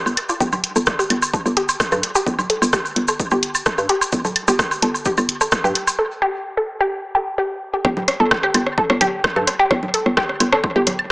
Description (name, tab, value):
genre	minimal techno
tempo	129 BPM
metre	4/4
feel	straight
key	unclear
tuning	A4 = 441 Hz
part	hollow knocking FM bass	bass	0.1-11.1 s	G1 to G2	-21 LUFS	equal	sidechain pumping
part	electronic woodblock, congas and rim click	percussion	0.1-11.1 s	none	-22 LUFS	equal	overdrive, tape echo
part	maracas	percussion	0.1-6.0 s	none	-28 LUFS	equal	none
part	punchy analog drum machine	drums	0.2-11.0 s	hi-hat, rim click	-21 LUFS	equal	overdrive, dub echo
part	resonant blip pluck	riff	0.3-10.8 s	F4 to A4	-21 LUFS	equal	phaser, sidechain pumping, dub echo
part	electronic kick drum	drums	0.4-10.7 s	none	-26 LUFS	equal	overdrive
room	moderate spring reverb, RT60 1.9 s, digital ambience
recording	echo-heavy mix, small speaker sound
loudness	-16 LUFS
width	side -22 dB against mid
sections	0.0-7.8 A section; 7.8-11.1 B section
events	break 6.0-7.8; drop 7.8-11.1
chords	0.0 G5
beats	| 0.41 0.87 1.33 1.80 | 2.27 2.73 3.20 3.66 | 4.13 4.59 5.06 5.52 | 5.99 6.45 6.92 7.38 | 7.85 8.31 8.78 9.24 | 9.71 10.17 10.64